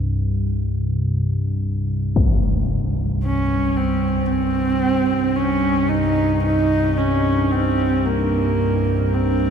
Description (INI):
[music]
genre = dark ambient drone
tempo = 56 BPM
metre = 4/4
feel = straight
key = C phrygian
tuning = A4 = 441 Hz
[part]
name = analog drone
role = drone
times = 0.0-9.5 s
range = C2 to G2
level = -20 LUFS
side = equal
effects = chorus
[part]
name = impact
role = percussion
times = 2.2-2.4 s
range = none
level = -24 LUFS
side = left 1 dB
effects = low-pass filter on sfx
[part]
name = dark horsehead fiddle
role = melody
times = 3.2-9.5 s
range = Bb3 to Eb4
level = -20 LUFS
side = right 1 dB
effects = diffuse ambient delay
[sound]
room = wet cathedral reverb, RT60 7.4 s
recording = in a vast, echoing space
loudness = -17 LUFS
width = side -7 dB against mid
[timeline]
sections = 0.0-9.5 A section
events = filter sweep on synth drone 0.0-9.5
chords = 0.0 C5